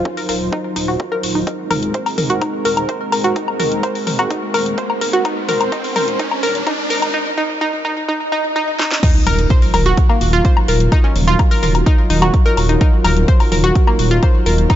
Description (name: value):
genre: melodic techno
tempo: 127 BPM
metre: 4/4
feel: straight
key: Eb dorian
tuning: A4 = 438 Hz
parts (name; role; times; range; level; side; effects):
- dark analog pad; sustained chords; 0.0-14.8 s; Gb3 to C5; -23 LUFS; right 1 dB; chorus, sidechain pumping
- electronic kick drum; drums; 0.1-14.8 s; none; -14 LUFS; equal; overdrive, high-pass filter on kick
- analog pluck; arpeggios; 0.2-14.7 s; Bb3 to C5; -19 LUFS; equal; chorus, cassette tape, sidechain pumping, digital delay
- house drum kit; drums; 0.2-14.8 s; crash cymbal, hi-hat, snare drum, toms, woodblock; -22 LUFS; left 3 dB; overdrive
- swelling detuned saw bass; bass; 0.3-14.7 s; Eb1; -18 LUFS; equal; sidechain pumping
- riser, swell and impact; sound effects; 3.5-10.9 s; none; -24 LUFS; equal; none
room: light reverb, digital ambience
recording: high-pass filter, nothing above 7.7 kHz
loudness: -13 LUFS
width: side -12 dB against mid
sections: 0.0-9.0 A section; 9.0-14.8 B section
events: build-up 0.0-9.0; filter sweep on synth arpeggio sound 0.0-9.0; filter sweep 0.0-9.0; riser 3.5-7.1; swell 8.2-9.0; drum fill 8.8; drop 9.0-14.8; impact 9.0-10.9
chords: 0.0 Ebmadd9; 1.5 Abadd9/Eb; 9.0 Ebmadd9